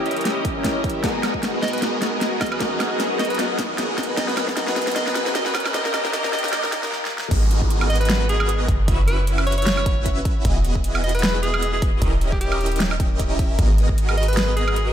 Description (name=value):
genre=future bass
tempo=153 BPM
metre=4/4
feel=swing 55% on 16ths, half-time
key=G# minor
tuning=A4 = 440 Hz
part: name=bright alto saxophone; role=melody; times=0.0-14.9 s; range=G4 to D#5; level=-27 LUFS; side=equal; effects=sidechain pumping, low-pass filter, ping-pong delay
part: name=tine electric piano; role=accompaniment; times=0.0-7.3 s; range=A#3 to A#4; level=-31 LUFS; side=left 3 dB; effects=medium stereo tremolo, sidechain pumping, tape echo
part: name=rich studio string section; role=sustained chords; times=0.0-7.3 s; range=E3 to D#5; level=-34 LUFS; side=left 1 dB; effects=none
part: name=supersaw chords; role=riff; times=0.0-14.9 s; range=A#3 to E5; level=-25 LUFS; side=equal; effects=phaser, vintage 12-bit sampler grit, sidechain pumping, low-pass filter, tape echo
part: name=riser and downlifter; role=sound effects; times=0.0-10.4 s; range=none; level=-34 LUFS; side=equal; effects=none
part: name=big-room dance drum kit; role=drums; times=0.1-14.8 s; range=crash cymbal, hi-hat, snare drum, woodblock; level=-25 LUFS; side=equal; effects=overdrive
part: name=electronic kick drum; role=drums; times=0.4-14.0 s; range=none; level=-23 LUFS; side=equal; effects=overdrive
part: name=warm 808-style bass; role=bass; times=7.3-14.9 s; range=D#1 to G#1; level=-21 LUFS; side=equal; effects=sidechain pumping
room=moderate lush hall reverb, RT60 1.6 s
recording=dreamy mix soaked in reverb, high-pass filter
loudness=-18 LUFS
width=side -10 dB against mid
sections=0.0-7.3 A section; 7.3-14.9 B section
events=build-up 0.0-7.3; drum fill 0.0-6.9, 6.9-7.3; filter sweep on supersaw synth 0.0-7.3; filter sweep 0.0-7.3; break 6.9-7.3; drop 7.3-14.9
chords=0.0 D#7b9; 1.0 G#m9; 2.4 F#7sus4; 4.2 Emaj9; 5.7 D#7b9; 7.3 G#m9; 8.7 F#7sus4; 10.4 Emaj9; 12.0 D#7b9; 13.6 G#m9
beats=0.25 0.65 | 1.04 1.43 1.82 2.21 | 2.61 3.00 3.39 3.78 | 4.17 4.57 4.96 5.35 | 5.74 6.13 6.53 6.92 | 7.31 7.70 8.10 8.49 | 8.88 9.27 9.66 10.06 | 10.45 10.84 11.23 11.63 | 12.02 12.41 12.80 13.19 | 13.59 13.98 14.37 14.76